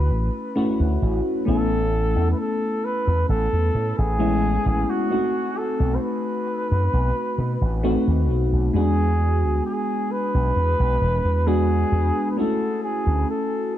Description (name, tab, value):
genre	vaporwave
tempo	66 BPM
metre	4/4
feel	straight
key	A major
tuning	A4 = 440 Hz
part	mellow flugelhorn	melody	0.0-13.8 s	F#4 to C5	-26 LUFS	equal	tape echo
part	mellow FM electric piano	accompaniment	0.0-13.8 s	G#3 to F#4	-24 LUFS	left 1 dB	wide subtle chorus
part	slap bass with an envelope filter	bass	0.0-13.2 s	E1 to B2	-21 LUFS	equal	none
room	light reverb, studio reverb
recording	dark, warm production, cassette tape, nothing above 10.6 kHz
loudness	-19 LUFS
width	side -12 dB against mid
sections	0.0-13.8 A section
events	none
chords	0.0 Dmaj7; 1.5 Amaj9; 5.1 B7b9; 8.7 E9; 12.4 Dmaj7 (rootless)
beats	0.56 | 1.47 2.38 3.29 4.20 | 5.11 6.02 6.93 7.84 | 8.74 9.65 10.56 11.47 | 12.38 13.29